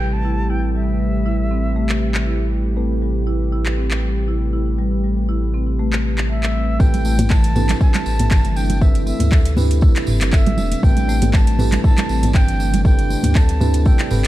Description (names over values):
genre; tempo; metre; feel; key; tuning
afro house; 119 BPM; 4/4; swing 54% on 16ths; A minor; A4 = 440 Hz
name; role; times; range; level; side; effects
bright concert flute; melody; 0.0-2.5, 6.3-14.3 s; E5 to A5; -28 LUFS; right 1 dB; digital delay
warm analog pad; sustained chords; 0.0-14.3 s; C3 to B4; -27 LUFS; left 1 dB; chorus, sidechain pumping
marimba with medium hard mallets; arpeggios; 0.0-14.2 s; E3 to A4; -26 LUFS; left 1 dB; sidechain pumping, digital delay
mellow tine electric piano; stabs; 0.0-14.3 s; C4 to B4; -29 LUFS; right 4 dB; medium stereo tremolo, sidechain pumping, digital delay
warm sub bass; bass; 0.0-14.3 s; E1 to D2; -20 LUFS; equal; sidechain pumping
afro-pop drum kit; drums; 1.9-14.3 s; handclaps, hi-hat, toms; -24 LUFS; equal; overdrive, studio reverb
electronic kick drum; drums; 6.8-14.0 s; none; -14 LUFS; equal; overdrive, studio reverb
tambourine; percussion; 6.8-14.2 s; none; -36 LUFS; right 4 dB; none
congas; percussion; 6.9-14.3 s; none; -24 LUFS; right 2 dB; none
room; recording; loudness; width
little or no reverb; dark, warm production; -15 LUFS; side -15 dB against mid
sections
0.0-6.8 A section; 6.8-14.3 B section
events
drop 6.8-14.3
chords
0.0 Am9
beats
0.24 | 0.75 1.25 1.76 2.26 | 2.77 3.27 3.77 4.28 | 4.78 5.29 5.79 6.30 | 6.80 7.30 7.81 8.31 | 8.82 9.32 9.82 10.33 | 10.83 11.34 11.84 12.35 | 12.85 13.35 13.86